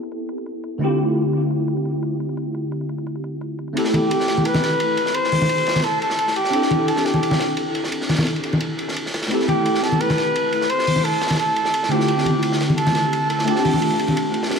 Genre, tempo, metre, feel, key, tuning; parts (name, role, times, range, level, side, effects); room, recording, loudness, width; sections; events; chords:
liquid drum and bass; 173 BPM; 4/4; straight; A minor; A4 = 436 Hz
tine electric piano; accompaniment; 0.0-14.6 s; D3 to A4; -22 LUFS; equal; ensemble chorus, analog delay
electronic hi-hat; drums; 0.0-14.6 s; -51 LUFS; left 3 dB
crunchy breakbeat drum kit; drums; 3.8-14.6 s; hi-hat, ride cymbal, snare drum; -26 LUFS; right 1 dB; high-pass filter on cymbals, high-pass filter on hats, high-pass filter on snare, high-pass filter on room, dub echo
warm flugelhorn; melody; 3.9-14.5 s; G4 to C5; -21 LUFS; equal; tape echo
congas; percussion; 3.9-14.1 s; -23 LUFS; left 1 dB
moderate echo chamber reverb, RT60 1.9 s, small room ambience; echo-heavy mix; -18 LUFS; side -6 dB against mid
0.0-14.6 A section
0.0 Am9; 0.8 Dm11; 3.8 Am9; 6.5 C69; 9.3 Am9; 11.9 Dm11; 13.5 G9sus4